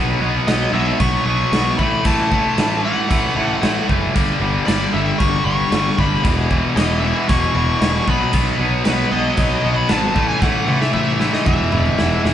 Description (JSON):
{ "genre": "hard rock", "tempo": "115 BPM", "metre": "4/4", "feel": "straight", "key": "unclear", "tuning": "A4 = 439 Hz", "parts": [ { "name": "distorted electric guitar", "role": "riff", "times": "0.0-12.3 s", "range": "E2 to B3", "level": "-22 LUFS", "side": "right 5 dB", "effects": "overdrive" }, { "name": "tight distorted guitar", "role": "riff", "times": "0.0-12.3 s", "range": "E2 to B3", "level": "-21 LUFS", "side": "left 5 dB", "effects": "distortion" }, { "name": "fuzz picked electric bass", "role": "bass", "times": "0.0-12.3 s", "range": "E1 to B1", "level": "-22 LUFS", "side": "equal", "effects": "overdrive" }, { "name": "bluesy overdriven lead guitar", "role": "melody", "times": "0.5-12.2 s", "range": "B4 to C#6", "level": "-23 LUFS", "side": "left 2 dB", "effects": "distortion" }, { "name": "big rock drum kit", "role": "drums", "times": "0.5-12.3 s", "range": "crash cymbal, kick drum, snare drum, toms", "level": "-20 LUFS", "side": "right 1 dB", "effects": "none" } ], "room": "moderate large studio reverb, RT60 0.9 s", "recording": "band playing live in one room, nothing above 11.0 kHz", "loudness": "-15 LUFS", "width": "side -10 dB against mid", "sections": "0.0-12.3 A section", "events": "drum fill 10.4-12.3", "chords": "0.0 B5; 1.8 A5; 4.1 G5; 6.2 E5; 8.1 B; 10.2 A5; 11.5 E5", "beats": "0.47 1.00 1.53 | 2.05 2.58 3.10 3.62 | 4.15 4.67 5.20 5.72 | 6.24 6.77 7.29 7.81 | 8.34 8.86 9.38 9.90 | 10.43 10.95 11.47 12.00" }